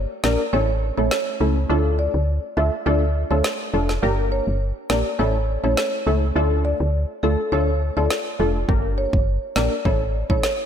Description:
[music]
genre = dancehall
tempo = 103 BPM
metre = 4/4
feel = straight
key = D harmonic minor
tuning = A4 = 435 Hz
[part]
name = woody FM bass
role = bass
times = 0.0-10.4 s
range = F1 to D2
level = -22 LUFS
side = equal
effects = none
[part]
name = marimba with medium mallets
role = melody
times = 0.2-10.7 s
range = A4 to E5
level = -26 LUFS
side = equal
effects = analog delay
[part]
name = punchy chord stab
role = accompaniment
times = 0.2-10.5 s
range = A3 to Bb4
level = -24 LUFS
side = equal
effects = chorus, sidechain pumping
[part]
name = deep house drum kit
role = drums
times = 0.2-10.6 s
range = kick drum, snare drum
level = -25 LUFS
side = equal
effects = none
[sound]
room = light reverb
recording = none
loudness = -19 LUFS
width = side -8 dB against mid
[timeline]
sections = 0.0-10.7 A section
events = break 0.0-8.7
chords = 0.0 Gm; 0.5 A; 1.7 Dm; 4.0 Gm; 5.2 A; 6.4 Dm; 8.7 Gm; 9.9 A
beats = 0.53 1.11 | 1.70 2.28 2.86 3.44 | 4.03 4.61 5.19 5.77 | 6.36 6.94 7.52 8.10 | 8.69 9.27 9.85 10.43

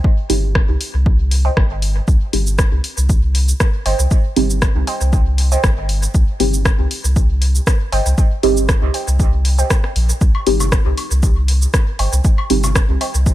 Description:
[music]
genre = dub techno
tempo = 118 BPM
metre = 4/4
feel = swing 53% on 16ths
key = C minor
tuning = A4 = 444 Hz
[part]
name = electronic kick drum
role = drums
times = 0.0-13.3 s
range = none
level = -14 LUFS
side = equal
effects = none
[part]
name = deep mellow chord stab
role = stabs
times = 0.3-12.7 s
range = C4 to G4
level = -20 LUFS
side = right 2 dB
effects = chorus, phaser, sidechain pumping, dub echo
[part]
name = soft dub sub bass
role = bass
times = 0.3-13.3 s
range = G1 to C2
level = -16 LUFS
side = equal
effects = sidechain pumping
[part]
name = punchy analog drum machine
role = drums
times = 0.3-13.3 s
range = hi-hat, rim click, shaker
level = -22 LUFS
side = equal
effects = dub echo
[part]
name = warbly dusty pluck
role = riff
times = 1.4-13.2 s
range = C5 to G5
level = -26 LUFS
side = right 3 dB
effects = chorus, sidechain pumping, dub echo
[part]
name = woodblock and congas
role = percussion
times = 10.3-13.1 s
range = none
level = -27 LUFS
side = left 4 dB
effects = overdrive, sidechain pumping on perc, dub echo
[sound]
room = digital ambience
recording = none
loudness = -13 LUFS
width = side -14 dB against mid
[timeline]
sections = 0.0-13.3 A section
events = filter sweep on synth stab 0.0-13.3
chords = 0.0 Cm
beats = | 0.04 0.55 1.06 1.57 | 2.08 2.59 3.09 3.60 | 4.11 4.62 5.13 5.64 | 6.14 6.65 7.16 7.67 | 8.18 8.69 9.20 9.71 | 10.21 10.72 11.23 11.74 | 12.25 12.76 13.26

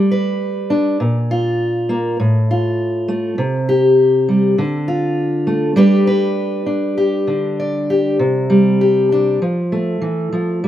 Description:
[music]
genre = folk, solo fingerstyle acoustic guitar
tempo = 100 BPM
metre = 4/4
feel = straight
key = unclear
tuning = A4 = 442 Hz
[part]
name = fingerpicked steel-string acoustic guitar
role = solo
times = 0.0-10.7 s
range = A2 to D5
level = -14 LUFS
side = equal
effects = slapback echo
[sound]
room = little or no reverb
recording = recorded outdoors, with no room sound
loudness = -14 LUFS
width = side -12 dB against mid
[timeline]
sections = 0.0-8.2 A section; 8.2-10.7 B section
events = none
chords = 0.0 G; 1.0 Bb5; 2.2 F/A; 3.4 C5; 4.6 Dm; 5.8 G; 8.2 Csus2; 9.4 F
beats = 0.40 | 1.00 1.60 2.20 2.80 | 3.39 3.98 4.58 5.17 | 5.77 6.37 6.97 7.58 | 8.20 8.81 9.41 10.02 | 10.62

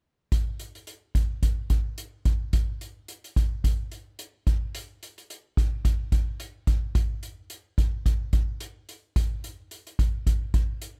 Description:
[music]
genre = pop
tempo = 109 BPM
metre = 4/4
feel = swing 56% on 16ths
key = none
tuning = none
[part]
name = soft-mallet drum kit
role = drums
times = 0.3-11.0 s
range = hi-hat, kick drum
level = -27 LUFS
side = equal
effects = none
[sound]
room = little or no reverb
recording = none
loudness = -27 LUFS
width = mono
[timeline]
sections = 0.3-9.2 A section; 9.2-11.0 B section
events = none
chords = none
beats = | 0.32 0.88 1.43 1.98 | 2.53 3.09 3.64 4.19 | 4.74 5.30 5.85 6.40 | 6.95 7.50 8.06 8.61 | 9.16 9.71 10.26 10.82

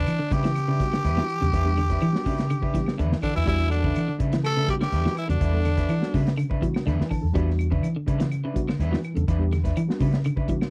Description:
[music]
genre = afrobeat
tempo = 124 BPM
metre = 4/4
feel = straight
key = E dorian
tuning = A4 = 440 Hz
[part]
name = raspy tenor saxophone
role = melody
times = 0.0-6.2 s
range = D4 to A4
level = -31 LUFS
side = equal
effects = none
[part]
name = clean electric guitar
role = arpeggios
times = 0.0-10.6 s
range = C#3 to G3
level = -33 LUFS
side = equal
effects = none
[part]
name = electric guitar at the edge of break-up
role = stabs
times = 0.0-10.5 s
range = G3 to B4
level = -37 LUFS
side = equal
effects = none
[part]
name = vintage muted fingered electric bass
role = bass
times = 0.0-10.7 s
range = E2 to E3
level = -27 LUFS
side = equal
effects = none
[part]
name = crunchy breakbeat drum kit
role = drums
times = 0.1-10.7 s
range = hi-hat, kick drum, snare drum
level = -31 LUFS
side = equal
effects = none
[part]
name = claves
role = percussion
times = 0.1-10.7 s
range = none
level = -45 LUFS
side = equal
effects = none
[part]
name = mellow reed electric piano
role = accompaniment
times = 0.8-10.7 s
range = G3 to A5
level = -34 LUFS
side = equal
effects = none
[part]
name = raspy baritone saxophone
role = second line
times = 3.2-6.2 s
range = D3 to A3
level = -36 LUFS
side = equal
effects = none
[sound]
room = little or no reverb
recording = dry, close 1970s-style studio recording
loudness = -24 LUFS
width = mono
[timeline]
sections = 0.0-10.7 A section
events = reed electric piano fill 6.6-7.3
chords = 0.0 Em7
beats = 0.07 0.56 1.04 | 1.53 2.01 2.50 2.98 | 3.47 3.95 4.44 4.92 | 5.41 5.89 6.38 6.86 | 7.34 7.83 8.31 8.80 | 9.28 9.77 10.25

